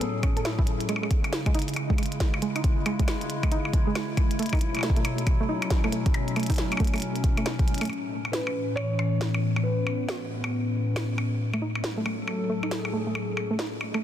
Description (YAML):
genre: IDM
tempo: 137 BPM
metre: 4/4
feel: swing 62% on 16ths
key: A major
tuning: A4 = 444 Hz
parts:
  - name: hollow soft pad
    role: sustained chords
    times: 0.0-14.0 s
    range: A2 to A4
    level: -29 LUFS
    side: left 1 dB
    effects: chorus
  - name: soft round pluck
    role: arpeggios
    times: 0.0-7.8, 11.5-14.0 s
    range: G#3 to A4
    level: -31 LUFS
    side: right 3 dB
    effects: chorus, vintage 12-bit sampler grit, tape echo
  - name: glitchy drum kit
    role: drums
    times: 0.0-14.0 s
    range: cabasa, hi-hat, percussion blips, snare drum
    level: -32 LUFS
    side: left 1 dB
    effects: small room reverb, tape echo
  - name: electronic kick drum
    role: drums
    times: 0.2-7.7 s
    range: none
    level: -24 LUFS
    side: equal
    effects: small room reverb
  - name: felt-muted upright piano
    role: melody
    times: 8.3-11.1 s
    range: B4 to C#5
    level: -34 LUFS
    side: left 2 dB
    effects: tape echo
room: light reverb, digital ambience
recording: dense, heavily limited modern master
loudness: -24 LUFS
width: side -11 dB against mid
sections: 0.0-7.9 A section; 7.9-14.0 B section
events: drum fill 7.7; filter sweep on analog synth pad 7.9-14.0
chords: 0.0 F#m7/A; 0.9 C#m; 4.4 B9sus4; 7.9 A; 11.4 F#m/A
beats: 0.01 0.45 | 0.89 1.33 1.76 2.20 | 2.64 3.08 3.52 3.95 | 4.39 4.83 5.27 5.71 | 6.14 6.58 7.02 7.46 | 7.90 8.33 8.77 9.21 | 9.65 10.09 10.52 10.96 | 11.40 11.84 12.28 12.71 | 13.15 13.59 14.03